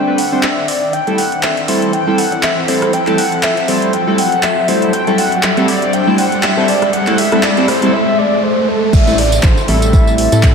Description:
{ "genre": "deep house", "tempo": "120 BPM", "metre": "4/4", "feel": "swing 56% on 16ths", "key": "A dorian", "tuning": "A4 = 438 Hz", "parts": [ { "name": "mellow horn-like synth lead", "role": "melody", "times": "0.0-10.5 s", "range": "A4 to G5", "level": "-16 LUFS", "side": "left 1 dB", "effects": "analog chorus, tape echo" }, { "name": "chorused polysynth", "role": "stabs", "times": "0.0-10.5 s", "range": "G3 to C5", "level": "-17 LUFS", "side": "right 1 dB", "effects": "sidechain pumping, diffuse ambient delay" }, { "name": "organ-like FM bass", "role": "bass", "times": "0.0-10.5 s", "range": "D1 to A2", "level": "-17 LUFS", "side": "equal", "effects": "sidechain pumping, high-pass filter" }, { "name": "riser and downlifter", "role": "sound effects", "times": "0.0-10.5 s", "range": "none", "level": "-20 LUFS", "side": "right 1 dB", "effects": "none" }, { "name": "airy breathy pad", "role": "texture", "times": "0.1-7.9 s", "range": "C4 to G5", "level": "-23 LUFS", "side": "equal", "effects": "chorus, phaser, sidechain pumping" }, { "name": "deep house drum kit", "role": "drums", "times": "0.2-10.5 s", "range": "crash cymbal, handclaps, hi-hat, rim click, tambourine", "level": "-20 LUFS", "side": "equal", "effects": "none" }, { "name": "electronic kick drum", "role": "drums", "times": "8.9-10.5 s", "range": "none", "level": "-10 LUFS", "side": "equal", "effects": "none" } ], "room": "wet plate reverb, RT60 2.5 s", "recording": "dreamy mix soaked in reverb", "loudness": "-11 LUFS", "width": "side -6 dB against mid", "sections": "0.0-8.9 A section; 8.9-10.5 B section", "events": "build-up 0.0-8.9; riser 0.0-8.9; drop 8.9-10.5", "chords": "0.0 D7sus4; 0.9 Am7; 4.9 D7sus4; 8.9 Am7", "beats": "0.43 | 0.93 1.43 1.93 2.43 | 2.93 3.43 3.93 4.43 | 4.93 5.43 5.93 6.43 | 6.93 7.43 7.93 8.43 | 8.93 9.43 9.93 10.43" }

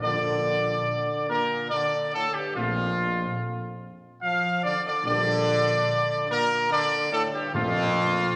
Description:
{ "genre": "classical, ceremonial fanfare", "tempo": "72 BPM", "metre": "3/4", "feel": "straight", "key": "Bb major", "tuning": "A4 = 444 Hz", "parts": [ { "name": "bright trumpet section", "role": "melody", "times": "0.0-8.4 s", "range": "F4 to F5", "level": "-27 LUFS", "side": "equal", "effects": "none" }, { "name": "mellow French horn section", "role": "sustained chords", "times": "0.0-7.8 s", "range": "F3 to D4", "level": "-41 LUFS", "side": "equal", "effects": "none" }, { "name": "warm trombone section", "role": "sustained chords", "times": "0.0-8.4 s", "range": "F2 to F3", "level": "-33 LUFS", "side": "equal", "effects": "none" }, { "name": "mellow tuba", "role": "bass", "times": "0.0-8.2 s", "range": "Bb1", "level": "-35 LUFS", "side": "equal", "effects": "none" }, { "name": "timpani", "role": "percussion", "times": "7.5-8.4 s", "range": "Bb2", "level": "-41 LUFS", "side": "equal", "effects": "none" } ], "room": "wet scoring stage reverb, RT60 1.8 s", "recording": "none", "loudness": "-25 LUFS", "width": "mono", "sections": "0.0-8.4 A section", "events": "none", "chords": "0.0 Bb; 2.6 F/Bb; 5.0 Gm/Bb; 7.5 F/Bb", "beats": "| 0.03 0.88 1.72 | 2.56 3.39 4.22 | 5.05 5.88 6.71 | 7.54" }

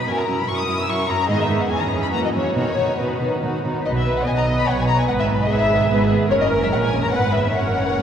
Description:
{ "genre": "quick classical-period movement for string orchestra", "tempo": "146 BPM", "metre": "3/4", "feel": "straight", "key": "B major", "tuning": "A4 = 440 Hz", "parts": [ { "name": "warm symphonic violin section", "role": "melody", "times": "0.0-8.0 s", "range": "B4 to E6", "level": "-22 LUFS", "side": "left 3 dB", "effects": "none" }, { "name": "rich studio violin section", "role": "second line", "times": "0.0-8.0 s", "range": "C#4 to D#5", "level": "-25 LUFS", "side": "right 1 dB", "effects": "none" }, { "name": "warm studio viola section", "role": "accompaniment", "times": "0.0-8.0 s", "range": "D#3 to B4", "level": "-25 LUFS", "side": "right 1 dB", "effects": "none" }, { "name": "warm studio cello section", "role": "bass", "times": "0.1-8.0 s", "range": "C#2 to B2", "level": "-24 LUFS", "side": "right 2 dB", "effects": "none" }, { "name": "clear symphonic double bass section", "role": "bass", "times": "3.9-8.0 s", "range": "F#1 to B1", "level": "-23 LUFS", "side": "right 1 dB", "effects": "none" } ], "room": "wet cathedral reverb, RT60 6.5 s", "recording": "recorded in a church or concert hall, vinyl crackle", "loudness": "-17 LUFS", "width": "side -8 dB against mid", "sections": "0.0-3.9 A section; 3.9-8.0 A section", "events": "none", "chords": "0.1 F#7; 1.3 G#m; 1.7 C#m/E; 2.1 F#7; 2.6 B; 5.1 E/G#; 6.3 F#; 7.1 E/G#", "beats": "| 0.07 0.48 0.88 | 1.29 1.70 2.12 | 2.56 2.99 3.43 | 3.85 4.27 4.68 | 5.09 5.49 5.90 | 6.30 6.71 7.13 | 7.55 7.97" }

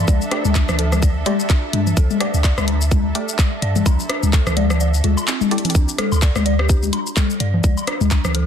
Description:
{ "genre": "minimal techno", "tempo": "127 BPM", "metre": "4/4", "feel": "swing 57% on 16ths", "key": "unclear", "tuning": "A4 = 440 Hz", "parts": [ { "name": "punchy sub bass", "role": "bass", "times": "0.0-8.5 s", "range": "D2 to G2", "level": "-19 LUFS", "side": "equal", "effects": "tube saturation, sidechain pumping" }, { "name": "muted studio string section", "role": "texture", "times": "0.0-5.8 s", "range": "D4 to E5", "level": "-30 LUFS", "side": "right 3 dB", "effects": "sidechain pumping" }, { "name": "dark detuned synth bell", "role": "riff", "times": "0.1-8.4 s", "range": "C4 to D5", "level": "-29 LUFS", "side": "right 5 dB", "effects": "chorus, phaser, sidechain pumping, digital delay" }, { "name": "electronic kick drum", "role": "drums", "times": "0.1-8.2 s", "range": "none", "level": "-16 LUFS", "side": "equal", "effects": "none" }, { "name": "garage drum kit", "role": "drums", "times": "0.1-8.5 s", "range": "handclaps, hi-hat, shaker", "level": "-25 LUFS", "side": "left 2 dB", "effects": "none" }, { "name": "booming analog drum machine", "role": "percussion", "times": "0.1-8.3 s", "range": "congas, rim click, toms, woodblock", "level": "-21 LUFS", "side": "left 4 dB", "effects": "soft clipping on snare" }, { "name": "filtered dub chord stab", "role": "stabs", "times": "0.3-5.6 s", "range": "A3 to D5", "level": "-30 LUFS", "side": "right 2 dB", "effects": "chorus, digital delay" }, { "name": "vibraphone with soft mallets", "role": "melody", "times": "6.6-6.8 s", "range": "G4", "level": "-32 LUFS", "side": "left 3 dB", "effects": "vintage 12-bit sampler grit, digital delay" } ], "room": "digital ambience", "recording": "dense, heavily limited modern master", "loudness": "-15 LUFS", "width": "side -8 dB against mid", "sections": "0.0-5.7 A section; 5.7-8.5 A section", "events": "drop 0.0-5.7, 5.7-8.5; kick drops out 4.8-5.7; drum fill 5.5", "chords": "0.0 Dsus4; 5.7 N.C.", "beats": "| 0.08 0.55 1.02 1.50 | 1.97 2.44 2.91 3.39 | 3.86 4.33 4.80 5.28 | 5.75 6.22 6.69 7.17 | 7.64 8.11" }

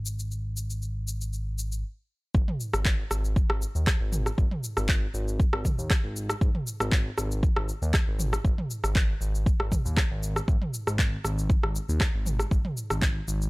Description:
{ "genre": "afro house", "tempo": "118 BPM", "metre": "4/4", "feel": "swing 53% on 16ths", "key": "unclear", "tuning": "A4 = 440 Hz", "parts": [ { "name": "smooth synth bass", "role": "bass", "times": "0.0-13.5 s", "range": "G#1 to D#2", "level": "-29 LUFS", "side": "equal", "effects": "sidechain pumping" }, { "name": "deep house drum kit", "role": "drums", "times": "0.1-13.5 s", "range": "handclaps, rim click, shaker, toms", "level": "-30 LUFS", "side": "equal", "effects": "none" }, { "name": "electronic kick drum", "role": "drums", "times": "2.3-13.1 s", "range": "none", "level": "-24 LUFS", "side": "equal", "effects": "none" } ], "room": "little or no reverb", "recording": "dry, gritty hardware recording, transformer saturation", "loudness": "-24 LUFS", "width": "side -24 dB against mid", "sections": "0.0-2.3 A section; 2.3-13.5 B section", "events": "stop 1.8-2.3; drop 2.3-13.5", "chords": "none", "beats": "| 0.31 0.82 1.33 1.84 | 2.35 2.85 3.36 3.87 | 4.38 4.89 5.40 5.91 | 6.41 6.92 7.43 7.94 | 8.45 8.96 9.46 9.97 | 10.48 10.99 11.50 12.01 | 12.52 13.02" }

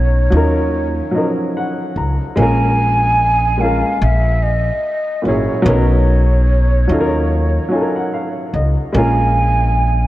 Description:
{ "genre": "lo-fi hip hop", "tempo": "73 BPM", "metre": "4/4", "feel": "swing 61% on 16ths", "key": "unclear", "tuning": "A4 = 436 Hz", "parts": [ { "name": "breathy hollow jazz flute", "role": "melody", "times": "0.0-10.1 s", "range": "C#5 to Ab5", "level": "-19 LUFS", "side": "right 1 dB", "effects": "low-pass filter" }, { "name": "dark upright piano", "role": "accompaniment", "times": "0.0-10.1 s", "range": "Bb2 to Bb5", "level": "-18 LUFS", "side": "equal", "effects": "cassette tape, low-pass filter" }, { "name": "upright bass", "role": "bass", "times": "0.0-10.1 s", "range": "Ab1 to Eb2", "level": "-15 LUFS", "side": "equal", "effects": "none" } ], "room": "moderate lush hall reverb, RT60 2.7 s", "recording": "dreamy mix soaked in reverb, cassette tape", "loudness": "-13 LUFS", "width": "side -15 dB against mid", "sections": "0.0-10.1 A section", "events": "none", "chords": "0.3 Ebm9; 2.4 Bbm7; 4.0 Gb9/Bb; 5.7 Bmaj9; 6.9 Ebm9; 8.9 Bbm7", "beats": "0.72 1.54 | 2.36 3.19 4.01 4.83 | 5.65 6.47 7.30 8.12 | 8.94 9.76" }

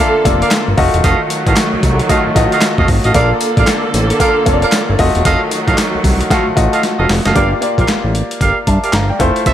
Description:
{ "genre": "R&B, new jack swing", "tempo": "114 BPM", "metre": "4/4", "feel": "swing 62% on 16ths", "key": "unclear", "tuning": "A4 = 440 Hz", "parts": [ { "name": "clear concert grand piano", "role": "accompaniment", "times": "0.0-9.5 s", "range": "A3 to Bb5", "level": "-17 LUFS", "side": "left 2 dB", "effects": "none" }, { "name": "rich studio string section", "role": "sustained chords", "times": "0.0-7.3 s", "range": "D3 to A4", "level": "-19 LUFS", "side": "right 2 dB", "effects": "none" }, { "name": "mellow horn section", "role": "stabs", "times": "0.0-9.5 s", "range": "F4 to F5", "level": "-18 LUFS", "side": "right 3 dB", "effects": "ping-pong delay" }, { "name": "fat analog bass", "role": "bass", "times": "0.3-9.5 s", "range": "E1 to G2", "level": "-16 LUFS", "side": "equal", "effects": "none" }, { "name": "boom bap sampler-style drum kit", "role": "drums", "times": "0.3-9.5 s", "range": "handclaps, hi-hat, kick drum, snare drum, tambourine", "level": "-16 LUFS", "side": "equal", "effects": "overdrive" } ], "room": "light reverb, studio reverb", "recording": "none", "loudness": "-11 LUFS", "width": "side -11 dB against mid", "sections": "0.0-7.4 A section; 7.4-9.5 B section", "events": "drum fill 6.8-7.4", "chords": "0.0 Bbmaj7; 0.8 F7b9; 3.1 Bbmaj7; 5.0 F7b9; 7.4 Gm7", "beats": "0.52 | 1.04 1.57 2.10 2.62 | 3.15 3.67 4.20 4.73 | 5.25 5.78 6.30 6.83 | 7.36 7.88 8.41 8.94 | 9.46" }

